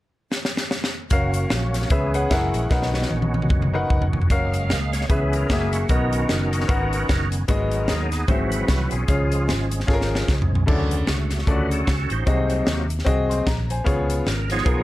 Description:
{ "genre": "uptempo gospel", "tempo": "150 BPM", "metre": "4/4", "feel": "swing 59% on 8ths", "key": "F# major", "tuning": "A4 = 440 Hz", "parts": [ { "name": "crisp fusion drum kit", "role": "drums", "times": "0.3-14.8 s", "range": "crash cymbal, hi-hat, kick drum, snare drum, toms", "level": "-23 LUFS", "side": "equal", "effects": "none" }, { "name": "bright upright piano", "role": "accompaniment", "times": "1.1-14.8 s", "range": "G#2 to B#5", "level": "-25 LUFS", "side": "left 2 dB", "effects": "plate reverb" }, { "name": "bright tonewheel organ", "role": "sustained chords", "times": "1.1-14.8 s", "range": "C#3 to E#5", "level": "-28 LUFS", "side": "right 2 dB", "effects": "fast rotary speaker, chorus vibrato" }, { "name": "warm French horn section", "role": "sustained chords", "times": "1.1-4.3 s", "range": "B3 to E#5", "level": "-36 LUFS", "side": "right 1 dB", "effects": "none" }, { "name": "fingered electric bass", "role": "bass", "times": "1.1-14.8 s", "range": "E#1 to D#2", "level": "-24 LUFS", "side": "equal", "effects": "none" } ], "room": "light reverb", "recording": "lossy compression artefacts", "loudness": "-19 LUFS", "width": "side -16 dB against mid", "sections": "0.0-1.1 A section; 1.1-4.3 B section; 4.3-14.8 C section", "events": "drum fill 0.3-1.1, 2.7-4.3, 9.9-10.7; tonewheel organ solo 4.3-14.8", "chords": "0.0 N.C.; 1.1 F#maj7; 1.9 C#m7; 2.3 F#9; 2.7 Bmaj7; 4.3 F#maj7; 5.1 C#m7; 5.5 F#9; 5.9 Bmaj7; 7.5 G#m7; 8.3 G#7alt; 9.1 C#; 10.7 Dmaj7; 12.3 G#7/B#; 13.9 C#7", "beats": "0.31 0.71 | 1.11 1.51 1.91 2.31 | 2.71 3.10 3.50 3.90 | 4.30 4.70 5.10 5.50 | 5.90 6.29 6.69 7.09 | 7.49 7.89 8.29 8.69 | 9.08 9.48 9.88 10.28 | 10.68 11.07 11.47 11.87 | 12.27 12.67 13.07 13.47 | 13.86 14.26 14.66" }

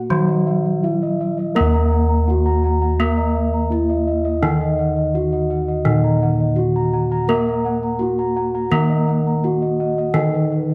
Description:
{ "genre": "Javanese gamelan", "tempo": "84 BPM", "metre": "4/4", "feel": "straight", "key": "Eb pelog", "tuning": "A4 = 440 Hz", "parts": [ { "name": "gamelan-type bronze metallophone", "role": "melody", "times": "0.0-10.7 s", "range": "Eb4 to Bb4", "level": "-25 LUFS", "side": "equal", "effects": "none" }, { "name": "gamelan-type bronze metallophone", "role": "accompaniment", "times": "0.0-10.7 s", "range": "Eb3 to Bb3", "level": "-24 LUFS", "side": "equal", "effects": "none" }, { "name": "gamelan-type bossed gongs", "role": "arpeggios", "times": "0.0-10.7 s", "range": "Cb5 to Bb5", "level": "-30 LUFS", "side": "equal", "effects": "none" }, { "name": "gamelan-type bronze metallophone", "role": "arpeggios", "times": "0.0-10.7 s", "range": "Cb5 to Bb5", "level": "-30 LUFS", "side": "equal", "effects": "none" }, { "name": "gamelan-type bossed gongs", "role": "bass", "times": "0.0-10.7 s", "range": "Eb2 to Bb4", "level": "-23 LUFS", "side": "equal", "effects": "none" } ], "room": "moderate recital hall reverb, RT60 1.6 s", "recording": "none", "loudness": "-19 LUFS", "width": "mono", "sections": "0.0-1.6 A section; 1.6-10.7 B section", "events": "none", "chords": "none", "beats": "0.10 0.84 | 1.56 2.28 2.99 3.71 | 4.43 5.14 5.86 6.58 | 7.29 8.01 8.72 9.44 | 10.16" }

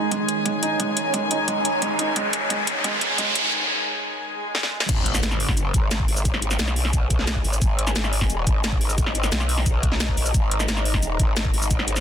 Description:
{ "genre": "dark technical drum and bass", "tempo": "176 BPM", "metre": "4/4", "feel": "straight", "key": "G# minor", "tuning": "A4 = 440 Hz", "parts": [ { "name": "warm studio string section", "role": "sustained chords", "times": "0.0-4.9 s", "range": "D#3 to G#5", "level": "-27 LUFS", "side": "left 3 dB", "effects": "sidechain pumping" }, { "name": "felt-muted upright piano", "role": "arpeggios", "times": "0.0-3.3 s", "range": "G#3 to D#4", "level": "-27 LUFS", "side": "right 4 dB", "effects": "sidechain pumping, dub echo" }, { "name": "riser, swell and impact", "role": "sound effects", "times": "0.8-6.3 s", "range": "none", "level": "-26 LUFS", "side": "equal", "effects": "none" }, { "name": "granular cloud pad", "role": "texture", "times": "0.0-12.0 s", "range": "G#3 to A#5", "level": "-31 LUFS", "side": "right 1 dB", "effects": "built-in reverb, sidechain pumping" }, { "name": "drum and bass drum kit", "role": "drums", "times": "0.1-12.0 s", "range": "cabasa, crash cymbal, hi-hat, snare drum", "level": "-25 LUFS", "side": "equal", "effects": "none" }, { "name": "electronic kick drum", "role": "drums", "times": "0.1-11.8 s", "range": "none", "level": "-23 LUFS", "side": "equal", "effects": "high-pass filter on kick, high-pass filter on room" }, { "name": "growl bass", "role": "bass", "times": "4.9-12.0 s", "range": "G#1 to B1", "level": "-24 LUFS", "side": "equal", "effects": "chorus, tube saturation" } ], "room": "light reverb", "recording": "dense, heavily limited modern master, high-pass filter", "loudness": "-20 LUFS", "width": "side -9 dB against mid", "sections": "0.0-4.9 A section; 4.9-12.0 B section", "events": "build-up 0.0-4.9; drum fill 0.0-3.5, 4.5-4.9; filter sweep on felt piano 0.0-4.9; filter sweep 0.0-4.9; riser 0.8-3.5; break 3.5-4.9; swell 4.2-4.9; drop 4.9-12.0; impact 4.9-6.3", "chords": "0.0 G#5", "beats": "0.12 0.46 | 0.80 1.14 1.48 1.82 | 2.16 2.50 2.84 3.18 | 3.52 3.87 4.21 4.55 | 4.89 5.23 5.57 5.91 | 6.25 6.59 6.93 7.28 | 7.62 7.96 8.30 8.64 | 8.98 9.32 9.66 10.00 | 10.34 10.68 11.03 11.37 | 11.71" }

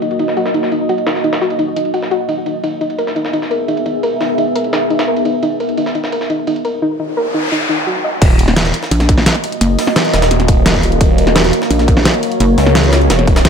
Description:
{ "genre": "dark technical drum and bass", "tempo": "172 BPM", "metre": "4/4", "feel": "straight", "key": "Eb phrygian", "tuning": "A4 = 440 Hz", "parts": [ { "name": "deep dark ambient pad", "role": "sustained chords", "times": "0.0-13.5 s", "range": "Bb3 to E5", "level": "-18 LUFS", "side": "right 1 dB", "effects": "chorus, built-in reverb, sidechain pumping" }, { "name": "soft round pluck", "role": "arpeggios", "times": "0.0-8.1 s", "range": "Eb4 to Eb5", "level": "-18 LUFS", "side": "left 1 dB", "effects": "chorus, sidechain pumping, ping-pong delay" }, { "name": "jungle sampler-style drum kit", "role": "drums", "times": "0.0-13.5 s", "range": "hi-hat, ride cymbal, snare drum", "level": "-23 LUFS", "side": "right 1 dB", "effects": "overdrive, high-pass filter on snare, low-pass filter on snare, high-pass filter on cymbals, low-pass filter on cymbals, high-pass filter on hats, low-pass filter on hats, high-pass filter on room, low-pass filter on room" }, { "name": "dubstep drum kit", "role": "drums", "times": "1.8, 4.6, 8.2-13.5 s", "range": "crash cymbal, hi-hat, snare drum", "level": "-15 LUFS", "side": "equal", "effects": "low-pass filter on snare, low-pass filter on hats, low-pass filter on cymbals, low-pass filter on room" }, { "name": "noise sweep", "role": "sound effects", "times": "7.0-8.2 s", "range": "none", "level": "-20 LUFS", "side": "right 1 dB", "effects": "none" }, { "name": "phased detuned saw bass", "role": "bass", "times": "8.2-13.5 s", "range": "Eb1 to Eb2", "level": "-14 LUFS", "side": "equal", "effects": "phaser, overdrive" }, { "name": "electronic kick drum", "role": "drums", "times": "8.2-13.3 s", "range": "none", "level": "-13 LUFS", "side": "equal", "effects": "overdrive" }, { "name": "pulsing pluck wobble bass", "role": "bass", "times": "8.9-12.6 s", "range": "Gb1 to Bb1", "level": "-12 LUFS", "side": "equal", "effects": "chorus" } ], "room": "light reverb", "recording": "none", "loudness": "-12 LUFS", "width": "side -6 dB against mid", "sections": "0.0-8.2 A section; 8.2-13.5 B section", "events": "noise sweep 7.0-8.2; drop 8.2-13.5", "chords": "0.0 Ebm; 2.6 E; 8.2 Ebm", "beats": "0.19 0.54 0.89 | 1.24 1.59 1.94 2.29 | 2.63 2.98 3.33 3.68 | 4.03 4.38 4.73 5.08 | 5.43 5.78 6.12 6.47 | 6.82 7.17 7.52 7.87 | 8.22 8.57 8.91 9.26 | 9.61 9.96 10.31 10.66 | 11.01 11.36 11.71 12.05 | 12.40 12.75 13.10 13.45" }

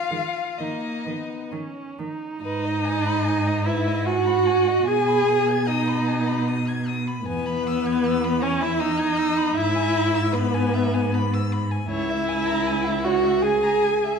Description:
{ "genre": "classical, slow romantic movement for string quartet", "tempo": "62-80 BPM", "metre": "3/4", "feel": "rubato", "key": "G# minor", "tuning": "A4 = 441 Hz", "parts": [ { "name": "dark violin", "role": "melody", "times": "0.0-14.2 s", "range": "B4 to G#5", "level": "-29 LUFS", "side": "left 7 dB", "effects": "none" }, { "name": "rich violin", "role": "second line", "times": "0.0-14.2 s", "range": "D#4 to G#6", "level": "-31 LUFS", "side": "left 4 dB", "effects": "none" }, { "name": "warm viola", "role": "accompaniment", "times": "0.1-14.2 s", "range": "G#3 to G#4", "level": "-23 LUFS", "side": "right 2 dB", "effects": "none" }, { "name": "rich cello", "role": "bass", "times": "0.1-14.2 s", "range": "C#2 to D#3", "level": "-26 LUFS", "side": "right 2 dB", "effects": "none" } ], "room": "wet recital hall reverb, RT60 1.5 s", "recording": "minimal, uncompressed stereo recording", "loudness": "-20 LUFS", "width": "side -6 dB against mid", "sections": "0.0-2.4 A section; 2.4-14.2 B section", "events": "none", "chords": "0.0 G#m/D# (rootless); 1.5 C#sus2/D#; 2.4 G#m; 4.9 G#m/B; 7.3 E; 9.6 E/G#; 11.9 A#m7b5/C# (rootless)", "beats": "0.59 1.52 | 2.43 3.25 4.06 | 4.87 5.67 6.46 | 7.26 8.05 8.81 | 9.56 10.33 11.11 | 11.88 12.65 13.43" }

